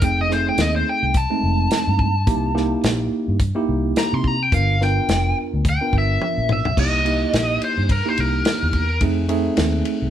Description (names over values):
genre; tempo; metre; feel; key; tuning
straight-eighth soul blues; 107 BPM; 4/4; swing 56% on 16ths; unclear; A4 = 440 Hz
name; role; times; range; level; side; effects
biting lead guitar; melody; 0.0-9.0 s; Bb4 to C6; -22 LUFS; left 1 dB; overdrive
tine electric piano; accompaniment; 0.0-10.1 s; G#3 to A#4; -23 LUFS; right 3 dB; medium stereo tremolo
vintage muted fingered electric bass; bass; 0.0-10.1 s; F1 to C3; -22 LUFS; equal; none
warm soul drum kit; drums; 0.0-10.0 s; crash cymbal, hi-hat, kick drum, ride cymbal, snare drum, toms; -23 LUFS; equal; none
room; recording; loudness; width
light reverb; band playing live in one room; -17 LUFS; side -10 dB against mid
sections
0.0-6.8 A section; 6.8-10.1 B section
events
drum fill 6.2-6.8; lead electric guitar solo 6.8-10.1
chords
0.0 F7#9; 2.3 C7#9; 4.5 G7#9; 6.8 C7#9; 9.0 F7#9